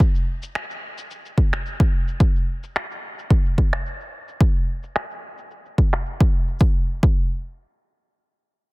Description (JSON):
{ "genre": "organic downtempo", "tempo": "109 BPM", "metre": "4/4", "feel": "swing 54% on 16ths", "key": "none", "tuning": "none", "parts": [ { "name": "electronic cabasa and finger snaps", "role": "drums", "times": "0.0-6.6 s", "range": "none", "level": "-29 LUFS", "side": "equal", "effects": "low-pass filter on perc, soft clipping on snare, low-pass filter on snare, low-pass filter on hats" }, { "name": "electronic kick drum", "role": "drums", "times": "0.0-7.2 s", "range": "none", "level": "-18 LUFS", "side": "equal", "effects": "overdrive" } ], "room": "little or no reverb", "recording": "dense, heavily limited modern master", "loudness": "-19 LUFS", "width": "side -24 dB against mid", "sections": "0.0-6.6 A section; 6.6-8.7 B section", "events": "filter sweep on drum 0.0-6.6", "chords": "none" }